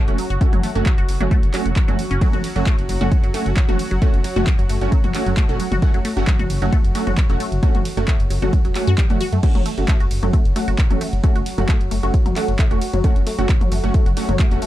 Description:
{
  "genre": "driving peak-time techno",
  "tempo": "133 BPM",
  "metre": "4/4",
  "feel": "straight",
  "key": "F# minor",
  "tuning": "A4 = 440 Hz",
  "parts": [
    { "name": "resonant blip pluck", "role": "riff", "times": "0.0-14.7 s", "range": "F#3 to F#4", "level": "-27 LUFS", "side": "left 1 dB", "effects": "phaser, tube saturation, sidechain pumping, ping-pong delay" },
    { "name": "analog drone", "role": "drone", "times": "0.0-14.7 s", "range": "F#3 to F#4", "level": "-31 LUFS", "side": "equal", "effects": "chorus, sidechain pumping" },
    { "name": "rave stab", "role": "stabs", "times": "0.1-14.6 s", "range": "A3 to F#4", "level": "-26 LUFS", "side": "right 3 dB", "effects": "chorus, built-in reverb, sidechain pumping, ping-pong delay" },
    { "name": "dark detuned saw bass", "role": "bass", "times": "0.1-14.6 s", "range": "E1 to F#2", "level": "-22 LUFS", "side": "equal", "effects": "tube saturation, sidechain pumping" },
    { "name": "punchy analog drum machine", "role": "drums", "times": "0.1-14.7 s", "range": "crash cymbal, handclaps, hi-hat, ride cymbal, toms", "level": "-28 LUFS", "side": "left 1 dB", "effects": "none" },
    { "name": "electronic kick drum", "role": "drums", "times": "0.4-14.5 s", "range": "none", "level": "-17 LUFS", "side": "equal", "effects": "none" }
  ],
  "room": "digital ambience",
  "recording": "dark, warm production",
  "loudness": "-16 LUFS",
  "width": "side -14 dB against mid",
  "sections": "0.0-14.7 A section",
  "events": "none",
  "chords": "0.0 F#m",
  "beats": "| 0.41 0.86 1.31 1.76 | 2.21 2.67 3.12 3.57 | 4.02 4.47 4.92 5.37 | 5.82 6.27 6.72 7.18 | 7.63 8.08 8.53 8.98 | 9.43 9.88 10.33 10.79 | 11.24 11.69 12.14 12.59 | 13.04 13.49 13.94 14.39"
}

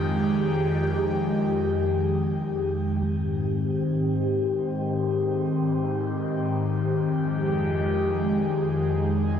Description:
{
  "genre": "hip hop",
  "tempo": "free time",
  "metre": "none",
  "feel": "none",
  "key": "Ab major",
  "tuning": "A4 = 440 Hz",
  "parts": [
    { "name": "airy breathy pad", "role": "solo", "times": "0.0-9.4 s", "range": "F2 to Ab4", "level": "-23 LUFS", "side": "left 1 dB", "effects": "chorus, phaser, low-pass filter" }
  ],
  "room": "light reverb, digital ambience",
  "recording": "nothing above 10.6 kHz",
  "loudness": "-23 LUFS",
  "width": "side -8 dB against mid",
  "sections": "0.0-3.0 A section; 3.0-9.4 B section",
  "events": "filter sweep on analog synth pad 3.0-9.4",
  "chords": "0.0 Fm9; 3.0 Abmaj7; 7.0 Fm9",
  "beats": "free time"
}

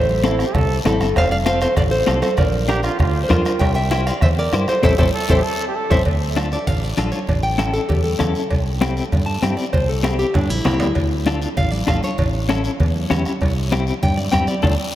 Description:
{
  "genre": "latin, cumbia",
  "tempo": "196 BPM",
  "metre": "4/4",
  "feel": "straight",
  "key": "D minor",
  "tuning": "A4 = 437 Hz",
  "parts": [
    { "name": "nylon-string guitar", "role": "melody", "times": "0.0-14.9 s", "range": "D4 to A5", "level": "-22 LUFS", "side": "equal", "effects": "none" },
    { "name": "fingered electric bass", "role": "bass", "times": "0.0-14.8 s", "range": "F1 to G2", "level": "-22 LUFS", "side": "equal", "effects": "none" },
    { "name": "congas", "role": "percussion", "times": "0.1-14.7 s", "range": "none", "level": "-27 LUFS", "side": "right 2 dB", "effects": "none" },
    { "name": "brilliant trombone", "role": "second line", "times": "0.2-6.1 s", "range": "E4 to A4", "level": "-29 LUFS", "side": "right 2 dB", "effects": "none" },
    { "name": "clean electric guitar", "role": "accompaniment", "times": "0.2-14.7 s", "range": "C4 to C5", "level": "-24 LUFS", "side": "left 4 dB", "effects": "tremolo" },
    { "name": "bombo", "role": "percussion", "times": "0.2-14.7 s", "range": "none", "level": "-22 LUFS", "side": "equal", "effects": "none" },
    { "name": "guiro", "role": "percussion", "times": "0.2-14.7 s", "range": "none", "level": "-34 LUFS", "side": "left 4 dB", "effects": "none" },
    { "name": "cowbell and timbales", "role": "percussion", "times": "0.6-14.7 s", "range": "none", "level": "-31 LUFS", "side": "right 3 dB", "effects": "none" }
  ],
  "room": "moderate cathedral reverb, RT60 5.9 s",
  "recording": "in a vast, echoing space",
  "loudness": "-16 LUFS",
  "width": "side -13 dB against mid",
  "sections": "0.0-6.1 A section; 6.1-14.9 B section",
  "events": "band accent 4.8-6.1, 14.6-14.9; drum fill 5.3-6.1, 10.4-11.0; nylon-string guitar solo 6.1-14.9",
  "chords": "0.0 Am; 1.2 F; 2.4 Bb; 3.6 C; 4.8 Am; 6.1 Dm; 7.3 A; 8.5 C; 11.0 Dm; 12.2 A; 13.4 C",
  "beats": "0.24 0.54 0.85 | 1.16 1.46 1.77 2.08 | 2.38 2.69 3.00 3.30 | 3.61 3.92 4.22 4.53 | 4.84 5.14 5.45 5.75 | 6.06 6.37 6.67 6.98 | 7.29 7.59 7.90 8.21 | 8.52 8.82 9.13 9.43 | 9.74 10.05 10.35 10.66 | 10.97 11.27 11.58 11.88 | 12.19 12.50 12.80 13.11 | 13.42 13.72 14.03 14.33 | 14.64 14.95"
}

